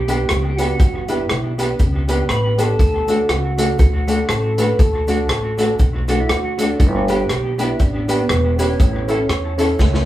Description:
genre	ska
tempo	120 BPM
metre	4/4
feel	swing 58% on 8ths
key	D major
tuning	A4 = 436 Hz
part	percussive tonewheel organ	melody	0.0-10.1 s	B3 to B4	-22 LUFS	right 1 dB	slow rotary speaker
part	upright bass	bass	0.0-10.1 s	E1 to E2	-21 LUFS	equal	none
part	mellow electric guitar	accompaniment	0.1-9.7 s	A3 to A4	-25 LUFS	right 1 dB	tape echo
part	warm upright piano	stabs	0.1-9.9 s	C#4 to B4	-22 LUFS	left 1 dB	none
part	vintage drum kit	drums	0.1-10.1 s	hi-hat, kick drum, rim click, snare drum	-19 LUFS	equal	tape echo
part	cabasa	percussion	0.1-9.9 s	none	-42 LUFS	right 1 dB	none
room	moderate studio ambience, RT60 0.5 s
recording	band playing live in one room, small room ambience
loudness	-15 LUFS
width	side -14 dB against mid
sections	0.0-10.1 A section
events	drum fill 9.8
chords	0.0 G; 2.8 D; 6.8 G; 8.8 A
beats	0.29 | 0.80 1.29 1.79 2.29 | 2.80 3.30 3.80 4.30 | 4.80 5.30 5.80 6.30 | 6.80 7.30 7.80 8.30 | 8.80 9.30 9.80

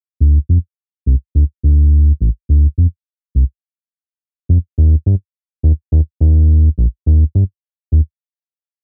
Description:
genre	IDM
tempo	105 BPM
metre	4/4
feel	straight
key	unclear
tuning	A4 = 441 Hz
part	round analog bass	bass	0.2-8.0 s	A1 to G2	-12 LUFS	equal	none
room	little or no reverb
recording	home recording on cassette, low-pass filter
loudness	-14 LUFS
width	mono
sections	0.2-8.8 A section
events	none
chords	none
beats	| 0.20 0.78 1.35 1.92 | 2.49 3.06 3.63 4.21 | 4.78 5.35 5.92 6.49 | 7.06 7.63

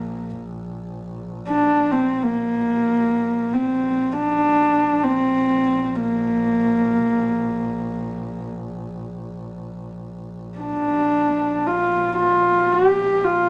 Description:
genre	mongolian traditional, Mongolian folk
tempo	free time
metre	none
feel	none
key	Bb gong mode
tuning	A4 = 440 Hz
part	dark horsehead fiddle	melody	0.0-13.5 s	Bb3 to G4	-20 LUFS	equal	none
part	warm double bass	drone	0.0-13.5 s	Bb1	-35 LUFS	equal	none
room	wet studio reverb, RT60 0.8 s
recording	none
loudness	-20 LUFS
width	mono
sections	0.0-13.5 A section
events	none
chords	none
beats	free time

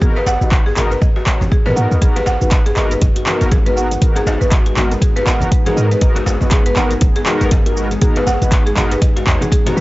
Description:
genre	afro house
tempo	120 BPM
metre	4/4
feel	swing 59% on 16ths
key	G# minor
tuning	A4 = 440 Hz
part	buzzing marimba with medium hard mallets	arpeggios	0.0-9.8 s	F#4 to F#5	-21 LUFS	equal	sidechain pumping, analog delay
part	mellow synth brass	stabs	0.0-9.8 s	B3 to C#5	-23 LUFS	left 1 dB	chorus, sidechain pumping, analog delay
part	deep house drum kit	drums	0.0-9.8 s	handclaps, hi-hat, shaker	-21 LUFS	equal	overdrive
part	electronic kick drum	drums	0.0-9.6 s	none	-14 LUFS	equal	none
part	congas	percussion	0.0-9.7 s	none	-27 LUFS	right 1 dB	none
part	djembe	percussion	0.2-9.7 s	none	-27 LUFS	left 1 dB	none
part	warm 808-style bass	bass	0.3-9.8 s	F#1 to G#2	-18 LUFS	equal	sidechain pumping
part	ethereal airy pad	sustained chords	2.7-9.8 s	G#3 to G#4	-24 LUFS	left 1 dB	ensemble chorus, built-in reverb, sidechain pumping
room	digital ambience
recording	dry, gritty hardware recording, nothing above 7.8 kHz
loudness	-12 LUFS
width	side -19 dB against mid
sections	0.0-9.8 A section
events	none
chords	0.0 G#m7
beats	| 0.02 0.52 1.02 1.52 | 2.02 2.52 3.02 3.52 | 4.02 4.52 5.02 5.52 | 6.02 6.52 7.02 7.52 | 8.02 8.52 9.02 9.52

